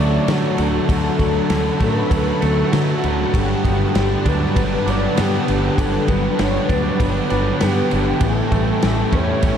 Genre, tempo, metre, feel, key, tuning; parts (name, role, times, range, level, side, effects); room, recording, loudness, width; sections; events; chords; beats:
rock, shoegaze and dream pop; 98 BPM; 4/4; straight; D major; A4 = 440 Hz
reedy FM lead; melody; 0.0-9.6 s; F#4 to D5; -24 LUFS; left 2 dB; chorus, tremolo, diffuse ambient delay
string machine, violas; sustained chords; 0.0-9.6 s; A4 to C#6; -28 LUFS; equal; ensemble chorus
twangy electric guitar; arpeggios; 0.0-9.6 s; E3 to D4; -29 LUFS; right 2 dB; analog chorus, diffuse ambient delay
crunchy overdriven guitar; riff; 0.0-9.6 s; G2 to C#4; -23 LUFS; right 7 dB; reverse reverb
thick fuzz guitar; riff; 0.0-9.6 s; G2 to E4; -24 LUFS; left 6 dB; distortion, ensemble chorus
fingered electric bass; bass; 0.0-9.6 s; G1 to D3; -22 LUFS; equal
loose indie drum kit; drums; 0.3-9.6 s; kick drum, ride cymbal, snare drum; -23 LUFS; equal
wet huge ambient reverb, RT60 7.7 s; dreamy mix soaked in reverb; -16 LUFS; side -8 dB against mid
0.0-9.6 A section
0.0 Dmaj7; 3.3 Gmaj7; 8.2 A7
0.28 | 0.89 1.51 2.12 2.73 | 3.34 3.95 4.56 5.17 | 5.78 6.39 7.00 7.61 | 8.21 8.82 9.43